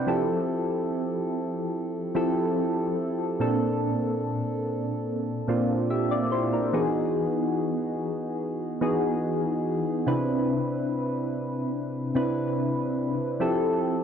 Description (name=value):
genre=R&B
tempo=72 BPM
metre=4/4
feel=straight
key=unclear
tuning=A4 = 439 Hz
part: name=soft electric-piano-like synth keys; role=solo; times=0.0-14.0 s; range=Bb2 to E5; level=-24 LUFS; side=equal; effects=chorus, phaser, analog delay
room=light reverb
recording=dry, gritty hardware recording, cassette tape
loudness=-24 LUFS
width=side -8 dB against mid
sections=0.1-13.4 A section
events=none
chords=0.1 Fmaj9; 3.4 Bbmaj9; 6.7 Emaj9; 10.1 Cmaj9; 13.4 Fmaj9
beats=| 0.07 0.91 1.74 2.57 | 3.40 4.24 5.07 5.91 | 6.74 7.57 8.40 9.24 | 10.07 10.90 11.74 12.57 | 13.40